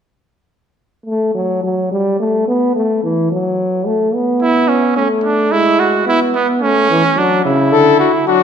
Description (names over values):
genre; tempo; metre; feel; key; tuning
classical, imitative canzona for brass ensemble; 108 BPM; 3/4; straight; D major; A4 = 437 Hz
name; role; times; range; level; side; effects
warm trombone; accompaniment; 1.1-8.4 s; C#3 to B3; -14 LUFS; equal; none
bright trumpet; second line; 4.4-8.4 s; B3 to F#4; -14 LUFS; right 4 dB; none
clear cornet; melody; 7.7-8.4 s; F#4 to A4; -11 LUFS; left 12 dB; none
room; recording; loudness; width
wet scoring stage reverb, RT60 1.9 s; dark, warm production; -12 LUFS; side -7 dB against mid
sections
0.5-8.4 A section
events
none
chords
0.5 N.C.; 3.9 A; 5.5 E/G#; 6.6 A; 7.2 D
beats
| 0.50 1.06 1.63 | 2.19 2.75 3.31 | 3.86 4.42 4.97 | 5.51 6.07 6.63 | 7.18 7.73 8.29